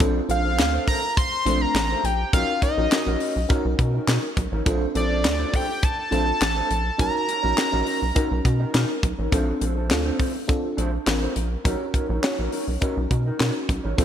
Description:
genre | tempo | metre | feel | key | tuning
early-eighties boogie funk | 103 BPM | 4/4 | straight | Bb major | A4 = 441 Hz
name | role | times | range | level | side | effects
FM electric piano with soft pad layer | accompaniment | 0.0-14.0 s | A3 to C#5 | -28 LUFS | left 1 dB | chorus
mellow electric guitar | riff | 0.0-14.0 s | D4 to D#5 | -31 LUFS | right 2 dB | analog chorus
rubbery square bass | bass | 0.0-14.0 s | A1 to B2 | -25 LUFS | equal | none
tight funk drum kit | drums | 0.0-14.0 s | handclaps, hi-hat, kick drum, snare drum | -24 LUFS | equal | none
fat analog lead | melody | 0.3-8.7 s | D5 to C6 | -25 LUFS | equal | phaser
room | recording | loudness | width
light reverb, studio reverb | bright 1980s-style digital production | -20 LUFS | side -9 dB against mid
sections
0.0-9.3 A section; 9.3-14.0 B section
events
none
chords
0.0 Bbmaj9; 2.3 Bmaj9; 4.7 Bbmaj9; 7.0 Bmaj9; 9.3 Bbmaj9; 11.7 Bmaj9

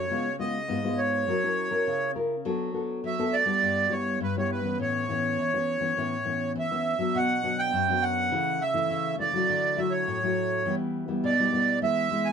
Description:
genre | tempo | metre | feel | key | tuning
samba | 102 BPM | 4/4 | straight | B minor from 7.1 s | A4 = 440 Hz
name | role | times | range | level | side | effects
accordion | melody | 0.0-12.3 s | B4 to G#5 | -26 LUFS | right 3 dB | none
nylon-string guitar | accompaniment | 0.0-12.3 s | F#2 to A#4 | -28 LUFS | left 2 dB | none
room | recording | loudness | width
moderate studio reverb, RT60 0.6 s | close, detailed microphones | -24 LUFS | side -6 dB against mid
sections
0.0-7.1 A section; 7.1-12.3 B section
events
none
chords
0.1 C#7; 1.3 F#7; 2.5 Bm7/F#; 3.6 Em/G; 4.8 Aadd9; 7.1 Bm; 8.3 A/C#; 9.5 Dadd9; 10.7 Em

